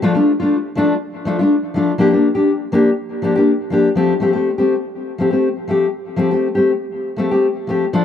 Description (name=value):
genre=highlife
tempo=122 BPM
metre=4/4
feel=swing 53% on 16ths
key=F major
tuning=A4 = 440 Hz
part: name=fingerpicked steel-string acoustic guitar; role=solo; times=0.0-8.0 s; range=F3 to G4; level=-14 LUFS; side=left 2 dB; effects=tape echo
room=light reverb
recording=dry, close 1970s-style studio recording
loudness=-14 LUFS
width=side -9 dB against mid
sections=0.0-4.0 A section; 4.0-8.0 B section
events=none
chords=0.0 Dm; 2.0 Bb6; 4.0 Fadd9